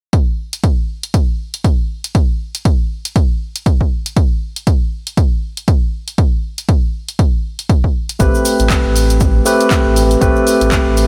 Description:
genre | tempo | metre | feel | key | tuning
deep house | 119 BPM | 4/4 | swing 58% on 16ths | A minor | A4 = 440 Hz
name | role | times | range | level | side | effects
electronic kick drum | drums | 0.1-10.8 s | none | -16 LUFS | equal | none
punchy analog drum machine | drums | 0.1-11.1 s | handclaps, hi-hat | -25 LUFS | equal | none
barky tine electric piano | stabs | 8.2-11.1 s | A3 to B4 | -16 LUFS | equal | overdrive, sidechain pumping, tape echo
sub bass with octave | bass | 8.2-11.1 s | A1 | -17 LUFS | equal | sidechain pumping
cabasa | percussion | 8.2-11.1 s | none | -28 LUFS | equal | none
room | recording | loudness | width
light reverb | none | -15 LUFS | mono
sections
0.1-11.1 A section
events
none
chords
0.1 N.C.; 8.2 Am9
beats
| 0.13 0.64 1.14 1.64 | 2.15 2.65 3.16 3.66 | 4.17 4.67 5.17 5.68 | 6.18 6.69 7.19 7.70 | 8.20 8.70 9.21 9.71 | 10.22 10.72

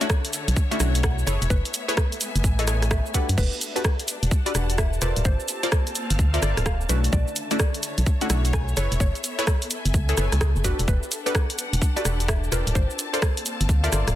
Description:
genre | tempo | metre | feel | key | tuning
UK garage, two-step garage | 128 BPM | 4/4 | swing 63% on 16ths | E dorian | A4 = 440 Hz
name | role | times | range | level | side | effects
mallet-like synth pluck | melody | 0.0-14.0 s | F#4 to G#5 | -34 LUFS | equal | chorus, cassette tape, tape echo
punchy chord stab | stabs | 0.0-14.2 s | A3 to D5 | -30 LUFS | left 2 dB | chorus, tape echo
punchy analog drum machine | drums | 0.0-14.1 s | crash cymbal, hi-hat, rim click, shaker | -28 LUFS | right 1 dB | none
dark symphonic string section | texture | 0.0-14.2 s | D3 to A5 | -34 LUFS | left 2 dB | sidechain pumping
electronic kick drum | drums | 0.1-13.8 s | none | -23 LUFS | equal | overdrive
organ-like FM bass | bass | 0.5-14.2 s | D1 to F#2 | -23 LUFS | equal | none
room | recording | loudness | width
digital ambience | dense, heavily limited modern master | -21 LUFS | side -13 dB against mid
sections
0.0-14.2 A section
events
none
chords
0.0 Bm11; 1.3 F#m11; 3.4 Em11; 5.3 Gm11; 6.9 Bm11; 8.8 F#m11; 10.9 Em11; 12.8 Gm11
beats
0.10 0.56 1.03 | 1.50 1.97 2.44 2.91 | 3.38 3.85 4.32 4.78 | 5.25 5.72 6.19 6.66 | 7.13 7.60 8.06 8.53 | 9.00 9.47 9.94 10.41 | 10.88 11.35 11.81 12.28 | 12.75 13.22 13.69

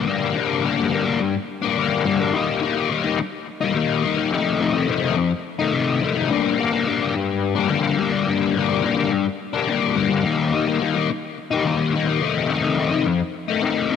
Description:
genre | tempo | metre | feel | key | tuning
rock | 213 BPM (eighths) | 7/8 | straight | G minor | A4 = 438 Hz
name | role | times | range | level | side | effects
overdriven electric guitar | solo | 0.0-14.0 s | F2 to Eb4 | -19 LUFS | left 6 dB | rotary speaker, tape echo
room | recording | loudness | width
light reverb, digital ambience | none | -19 LUFS | side -7 dB against mid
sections
0.0-14.0 A section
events
none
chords
0.0 Gm; 2.3 Eb; 4.3 F7; 6.3 Gm; 10.3 Eb; 12.2 F7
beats
0.08 | 0.37 0.65 0.93 1.22 1.50 1.78 2.07 | 2.35 2.63 2.92 3.20 3.48 3.76 4.05 | 4.33 4.61 4.89 5.18 5.46 5.74 6.02 | 6.31 6.59 6.87 7.15 7.43 7.72 8.00 | 8.28 8.56 8.84 9.13 9.41 9.69 9.97 | 10.25 10.53 10.81 11.10 11.38 11.66 11.94 | 12.22 12.50 12.78 13.06 13.34 13.62 13.91

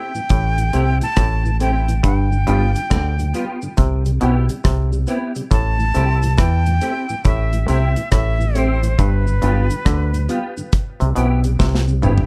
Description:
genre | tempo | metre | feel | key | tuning
roots reggae | 69 BPM | 4/4 | swing 64% on 16ths | A minor | A4 = 440 Hz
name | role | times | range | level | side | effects
breathy bright jazz flute | melody | 0.0-10.7 s | B4 to A5 | -27 LUFS | equal | tape echo
clean electric guitar | accompaniment | 0.0-12.3 s | B3 to G4 | -29 LUFS | equal | ensemble chorus, tape echo
mellow tonewheel organ | accompaniment | 0.1-12.1 s | G2 to G4 | -29 LUFS | equal | overdrive, chorus vibrato, slow rotary speaker
cabasa | percussion | 0.1-12.3 s | none | -44 LUFS | equal | none
muted clav | riff | 0.3-12.3 s | G2 to E3 | -27 LUFS | equal | none
deep dub fingered electric bass | bass | 0.3-12.3 s | G1 to E2 | -20 LUFS | equal | none
deep reggae drum kit | drums | 0.3-12.3 s | hi-hat, kick drum, rim click, snare drum, toms | -20 LUFS | equal | none
room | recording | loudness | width
light reverb | dark, warm production | -18 LUFS | mono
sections
0.0-12.3 A section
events
drum fill 11.6-12.3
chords
0.0 Am7; 2.0 G7; 3.8 Cmaj7; 5.5 Am7; 9.0 G7; 10.7 Cmaj7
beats
0.30 1.17 | 2.04 2.91 3.78 4.64 | 5.51 6.38 7.25 8.12 | 8.99 9.86 10.72 11.59

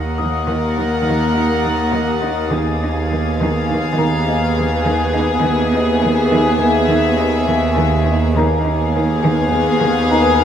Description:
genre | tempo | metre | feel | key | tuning
cinematic, suspense film score | 103 BPM | 5/4 | straight | unclear | A4 = 442 Hz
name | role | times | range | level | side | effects
warm symphonic violin section | melody | 0.0-10.4 s | E5 to Gb5 | -25 LUFS | left 2 dB | none
warm symphonic violin section | second line | 0.0-10.4 s | Ab4 to Bb4 | -21 LUFS | left 5 dB | none
dark symphonic viola section | accompaniment | 0.0-10.4 s | Bb3 to Cb4 | -21 LUFS | right 1 dB | none
warm symphonic cello section | riff | 0.0-10.4 s | Eb3 to Eb4 | -22 LUFS | right 1 dB | none
rich symphonic cello section | bass | 0.0-10.4 s | Eb2 | -22 LUFS | right 2 dB | none
rich symphonic double bass section | bass | 0.0-10.4 s | Eb2 | -22 LUFS | right 2 dB | none
warm studio violin section | texture | 0.0-5.1 s | Eb6 to A6 | -30 LUFS | left 3 dB | none
worn celesta | texture | 0.0-10.4 s | Bb4 to Eb6 | -26 LUFS | left 5 dB | none
room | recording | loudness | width
moderate scoring stage reverb, RT60 2.0 s | none | -14 LUFS | side -9 dB against mid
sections
0.0-10.4 A section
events
none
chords
0.0 Ebm; 2.5 Fdim/Eb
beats
0.20 0.79 1.37 1.95 | 2.53 3.12 3.70 4.28 4.86 | 5.45 6.03 6.61 7.19 7.78 | 8.36 8.94 9.52 10.11

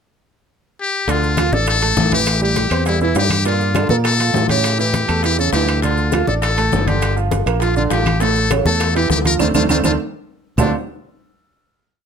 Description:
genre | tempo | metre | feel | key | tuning
latin, salsa | 202 BPM | 4/4 | straight | D minor | A4 = 441 Hz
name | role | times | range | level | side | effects
trumpet with metal mute | melody | 0.8-10.7 s | D4 to Bb4 | -20 LUFS | left 4 dB | none
bright upright piano | accompaniment | 1.1-10.7 s | A2 to D5 | -21 LUFS | right 6 dB | none
fingered electric bass | bass | 1.1-10.7 s | G1 to Bb2 | -19 LUFS | equal | none
bongos | percussion | 1.1-10.7 s | none | -26 LUFS | left 8 dB | none
congas | percussion | 1.1-10.7 s | none | -23 LUFS | left 2 dB | none
maracas | percussion | 1.1-10.7 s | none | -35 LUFS | right 7 dB | none
timbales | percussion | 1.1-10.7 s | none | -26 LUFS | right 8 dB | none
claves | percussion | 1.4-10.7 s | none | -32 LUFS | right 6 dB | none
room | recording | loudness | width
light reverb | close, detailed microphones | -14 LUFS | side -7 dB against mid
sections
0.0-1.1 pickup bar; 1.1-10.6 A section; 10.6-11.8 final chord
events
band accent 9.4-10.6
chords
0.0 N.C.; 1.1 Dm; 2.3 Am7; 3.5 Gm7; 4.6 A7; 5.8 Dm; 7.0 Gm7; 8.2 A; 9.4 D7(no3); 10.6 Dm7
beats
0.19 0.49 0.78 | 1.08 1.38 1.67 1.97 | 2.27 2.56 2.86 3.15 | 3.45 3.75 4.04 4.34 | 4.64 4.94 5.23 5.53 | 5.83 6.13 6.42 6.72 | 7.02 7.32 7.61 7.91 | 8.21 8.51 8.80 9.10 | 9.40 9.70 9.99 10.29 | 10.59

